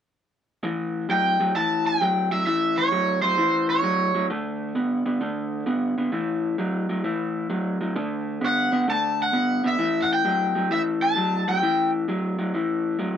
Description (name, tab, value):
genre	blues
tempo	131 BPM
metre	4/4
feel	swing 67% on 8ths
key	A mixolydian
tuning	A4 = 440 Hz
part	electric guitar through a small old amp	riff	0.6-13.2 s	A2 to B3	-24 LUFS	left 1 dB	none
part	overdriven semi-hollow guitar	melody	1.1-4.3, 8.5-11.9 s	C5 to A5	-22 LUFS	equal	none
room	moderate club reverb, RT60 0.5 s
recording	none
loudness	-21 LUFS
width	side -8 dB against mid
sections	0.6-13.2 A section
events	none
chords	0.6 A7; 4.3 D5; 6.1 A5; 8.0 D; 9.8 A5